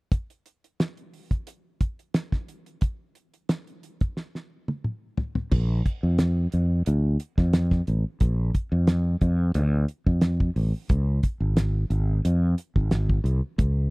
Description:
electric jazz fusion; 89 BPM; 4/4; straight; A4 = 437 Hz
damped 70s drum kit; drums; 0.1-13.8 s; crash cymbal, hi-hat, kick drum, snare drum, toms; -23 LUFS; equal
fretless electric bass; bass; 5.5-13.9 s; Ab1 to F2; -22 LUFS; equal
little or no reverb; dry, close 1970s-style studio recording; -22 LUFS; side -29 dB against mid
0.1-5.5 A section; 5.5-13.9 B section
drum fill 4.2-5.5
| 0.12 0.80 1.47 2.15 | 2.82 3.50 4.17 4.85 | 5.52 6.20 6.87 7.54 | 8.21 8.89 9.56 10.23 | 10.90 11.58 12.25 12.92 | 13.59

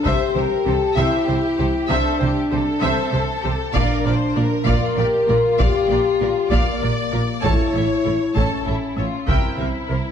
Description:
cinematic, epic orchestral film score; 65 BPM (dotted quarters); 6/8; straight; A4 = 441 Hz
warm studio violin section; melody; 0.0-10.0 s; G4 to A5; -29 LUFS; left 3 dB
warm symphonic violin section; second line; 0.0-10.1 s; E4 to D5; -27 LUFS; left 2 dB
warm symphonic viola section; accompaniment; 0.0-10.0 s; E4 to E5; -27 LUFS; equal
dark French horn section; sustained chords; 0.0-10.1 s; Bb3 to Bb4; -21 LUFS; left 3 dB
rich studio double bass section; bass; 0.0-10.0 s; A1 to C2; -25 LUFS; right 3 dB
warm symphonic cello section; bass; 0.1-10.0 s; A2 to C3; -26 LUFS; right 2 dB
taiko ensemble; drums; 0.1-9.9 s; -23 LUFS; equal
moderate scoring stage reverb, RT60 1.9 s; dark, warm production; -17 LUFS; side -8 dB against mid
0.0-10.1 A section
0.1 C; 3.7 Bb; 7.4 A; 9.3 C7
| 0.06 0.98 | 1.90 2.83 | 3.75 4.67 | 5.59 6.52 | 7.44 8.36 | 9.29

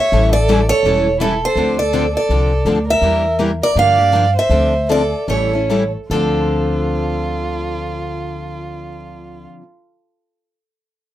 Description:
acoustic string swing (jazz manouche); 141-166 BPM; 4/4; swing 62% on 8ths; D minor; A4 = 439 Hz
picked steel-string acoustic guitar; melody; 0.0-9.5 s; A4 to F5; -18 LUFS; right 1 dB
warm violin; second line; 0.0-9.5 s; E4 to D5; -23 LUFS; right 3 dB
picked steel-string acoustic guitar; accompaniment; 0.1-9.6 s; D3 to A4; -22 LUFS; left 5 dB
picked steel-string acoustic guitar; accompaniment; 0.1-9.7 s; D3 to Bb4; -26 LUFS; right 4 dB
upright bass; bass; 0.1-9.4 s; E1 to G2; -20 LUFS; equal
light reverb; rough home demo mix; -14 LUFS; side -13 dB against mid
0.0-3.0 A section; 3.0-6.1 B section; 6.1-9.5 C section
slowing down 3.0-6.1
0.1 A7; 1.6 Dm7; 3.0 Em7b5; 3.8 Gm7; 4.5 Dm7; 5.3 A7; 6.1 Dm7
| 0.13 0.49 0.85 1.21 | 1.57 1.94 2.30 2.66 | 3.02 3.39 3.75 4.12 | 4.50 4.89 5.28 5.69 | 6.11 6.54 6.96 7.39 | 7.81 8.24 8.67 9.09

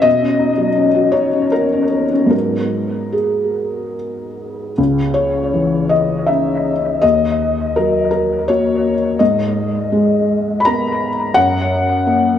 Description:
neoclassical minimalist piano; 72-86 BPM; 3/4; rubato; G# minor; A4 = 440 Hz
felt-muted upright piano; solo; 0.0-12.4 s; C#2 to B5; -14 LUFS; left 2 dB; dub echo
moderate echo chamber reverb, RT60 2.7 s; echo-heavy mix, cassette tape, small room ambience; -14 LUFS; side -9 dB against mid
0.0-4.8 A section; 4.8-12.4 B section
0.1 Badd9; 2.3 G#m7; 4.8 C#madd9; 7.0 D#m; 9.2 G#madd9; 11.4 F#
| 0.06 0.78 1.53 | 2.33 3.15 3.97 | 4.78 5.55 6.29 | 7.03 7.78 8.50 | 9.21 9.93 10.66 | 11.36 12.07

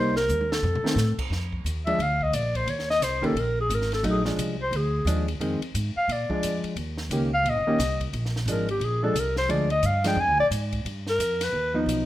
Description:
jazz, small-group swing and bop; 176 BPM; 4/4; swing 62% on 8ths; Bb mixolydian; A4 = 440 Hz
warm clarinet; melody; 0.0-11.8 s; G4 to Ab5; -25 LUFS; left 1 dB
hollow-body jazz guitar; accompaniment; 0.0-12.1 s; Eb3 to G4; -28 LUFS; equal
upright bass; bass; 0.0-12.1 s; Eb1 to Bb2; -28 LUFS; equal
compact cocktail drum kit; drums; 0.2-12.0 s; crash cymbal, hi-hat, kick drum, ride cymbal, snare drum, toms; -34 LUFS; equal
light reverb; -23 LUFS; side -14 dB against mid
0.0-1.3 A section; 1.3-12.1 B section
drum fill 0.3-1.0; clarinet solo 1.3-12.1
0.0 Cm7; 0.6 F7; 1.3 Bb; 2.7 Eb5; 4.0 Bb7; 5.4 Fm7; 6.1 Bb7; 6.8 Eb7; 8.1 Bb7; 10.9 G7alt
0.29 0.64 0.98 | 1.32 1.66 2.00 2.34 | 2.68 3.02 3.36 3.70 | 4.04 4.38 4.72 5.07 | 5.41 5.75 6.09 6.43 | 6.77 7.11 7.45 7.79 | 8.13 8.47 8.81 9.16 | 9.50 9.84 10.18 10.52 | 10.86 11.20 11.54 11.88

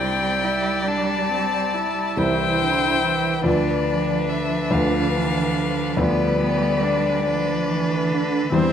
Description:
classical, slow romantic movement for piano quintet; 47 BPM (dotted quarters); 12/8; rubato; A4 = 440 Hz
warm violin; melody; 0.0-8.7 s; D5 to A5; -24 LUFS; left 6 dB
warm cello; second line; 0.0-8.7 s; D3 to G3; -26 LUFS; right 5 dB
warm violin; second line; 0.0-8.7 s; B4 to D5; -28 LUFS; left 2 dB
clear grand piano; accompaniment; 0.0-8.7 s; C2 to C5; -24 LUFS; left 1 dB
rich viola; accompaniment; 0.0-8.7 s; B3 to E4; -27 LUFS; right 4 dB
wet recital hall reverb, RT60 1.6 s; -19 LUFS; side -8 dB against mid
0.0-8.7 A section
0.0 C; 3.5 Bdim/D
0.87 2.18 | 3.46 4.72 5.99 7.27 | 8.54

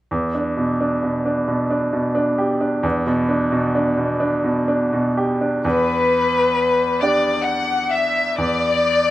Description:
neoclassical piano and strings; 44 BPM (dotted quarters); 6/8; rubato; E minor; A4 = 443 Hz
bright grand piano; accompaniment; 0.1-9.1 s; E2 to D5; -19 LUFS; right 1 dB; slapback echo
rich chamber violin section; melody; 5.7-9.1 s; B4 to F#5; -17 LUFS; left 3 dB; slapback echo
light reverb; recorded outdoors, with no room sound; -17 LUFS; side -15 dB against mid
0.1-5.6 A section; 5.6-9.1 B section
0.1 Em7
| 0.12 1.49 | 2.84 4.22 | 5.64 7.02 | 8.38

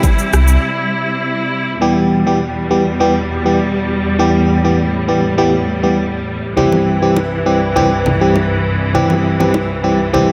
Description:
afrobeats; 101 BPM; 4/4; straight; A4 = 440 Hz
barking FM electric piano; accompaniment; 0.0-10.3 s; E3 to G4; -17 LUFS; equal; chorus
clear studio string section; sustained chords; 0.0-10.3 s; C2 to E4; -20 LUFS; equal; sidechain pumping
afro-pop drum kit; drums; 0.0-0.6 s; kick drum, rim click, shaker; -19 LUFS; equal; overdrive
bongos and congas; percussion; 0.0-0.2, 6.6-10.3 s; -24 LUFS; equal
sub bass with octave; bass; 0.3-0.6 s; C2; -12 LUFS; equal
wet lush hall reverb, RT60 1.9 s; dreamy mix soaked in reverb; -15 LUFS; mono
0.0-1.8 A section; 1.8-10.3 B section
break 0.6-1.8
0.0 C; 1.8 Em; 6.6 C
0.03 0.63 1.22 | 1.81 2.41 3.00 3.60 | 4.19 4.78 5.38 5.97 | 6.57 7.16 7.75 8.35 | 8.94 9.54 10.13

